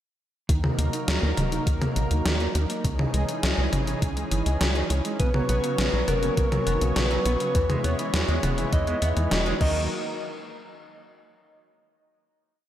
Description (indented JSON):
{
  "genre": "synthwave",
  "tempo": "102 BPM",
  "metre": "4/4",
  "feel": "straight",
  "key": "Eb phrygian",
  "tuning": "A4 = 440 Hz",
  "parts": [
    { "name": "lush unison pad", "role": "sustained chords", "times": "0.5-9.9 s", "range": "Fb3 to C#5", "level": "-31 LUFS", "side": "equal", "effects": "chorus, sidechain pumping" },
    { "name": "mellow electric guitar", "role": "riff", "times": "0.5-9.9 s", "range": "B2 to E4", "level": "-35 LUFS", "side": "right 4 dB", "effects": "ensemble chorus, digital delay, slapback echo" },
    { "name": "tight sequencer bass", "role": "bass", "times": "0.5-9.9 s", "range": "Eb1 to E2", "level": "-26 LUFS", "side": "equal", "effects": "sidechain pumping" },
    { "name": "electronic kick drum", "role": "drums", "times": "0.5-9.7 s", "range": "none", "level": "-26 LUFS", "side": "equal", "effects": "overdrive" },
    { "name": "gated 80s digital drum machine", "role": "drums", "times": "0.5-9.7 s", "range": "crash cymbal, hi-hat, snare drum, toms", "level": "-28 LUFS", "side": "equal", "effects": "gated reverb, gated reverb snare, overdrive" },
    { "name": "soft octave-layered synth lead", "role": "melody", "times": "5.2-9.8 s", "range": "Bb4 to Eb5", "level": "-30 LUFS", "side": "left 1 dB", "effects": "chorus, digital delay, slapback echo" },
    { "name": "soft synth bell", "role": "second line", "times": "5.2-9.8 s", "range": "Bb4 to Eb5", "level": "-36 LUFS", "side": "equal", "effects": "none" },
    { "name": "clean electric guitar", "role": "arpeggios", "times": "5.2-9.9 s", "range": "C#3 to B3", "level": "-34 LUFS", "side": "right 2 dB", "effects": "digital delay, slapback echo" }
  ],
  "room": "moderate lush hall reverb, RT60 2.8 s",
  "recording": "big arena sound",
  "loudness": "-22 LUFS",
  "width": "side -11 dB against mid",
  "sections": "0.5-9.9 verse; 9.9-12.3 final hit",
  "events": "none",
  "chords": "0.5 Ebm; 2.8 Dbmadd9; 5.2 Bsus2; 7.5 E; 9.6 Ebm; 9.9 N.C.",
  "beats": "| 0.49 1.08 1.67 2.26 | 2.84 3.43 4.02 4.61 | 5.20 5.79 6.37 6.96 | 7.55 8.14 8.73 9.31"
}